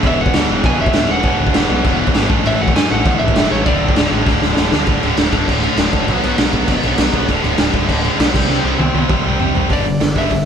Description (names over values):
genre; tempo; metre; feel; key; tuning
punk rock; 198 BPM; 4/4; straight; D major; A4 = 437 Hz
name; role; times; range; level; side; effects
cranked stack guitar; riff; 0.0-10.5 s; D2 to C4; -20 LUFS; left 8 dB; overdrive
tight distorted guitar; riff; 0.0-10.5 s; D2 to C4; -20 LUFS; right 9 dB; distortion
fuzz picked electric bass; bass; 0.0-10.5 s; D1 to F#2; -22 LUFS; equal; overdrive
raw garage drum kit; drums; 0.0-10.4 s; crash cymbal, hi-hat, kick drum, snare drum, toms; -16 LUFS; equal; none
lightly driven lead guitar; melody; 0.1-4.1, 9.7-10.5 s; C#5 to G#5; -21 LUFS; right 1 dB; none
room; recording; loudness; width
light reverb; band playing live in one room; -13 LUFS; side -8 dB against mid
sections
0.0-4.9 A section; 4.9-9.7 B section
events
drum fill 4.3-4.9, 8.5-9.7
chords
0.0 E5; 2.3 A5; 3.7 D5; 6.1 B5; 7.3 D5; 8.3 C5; 9.7 G5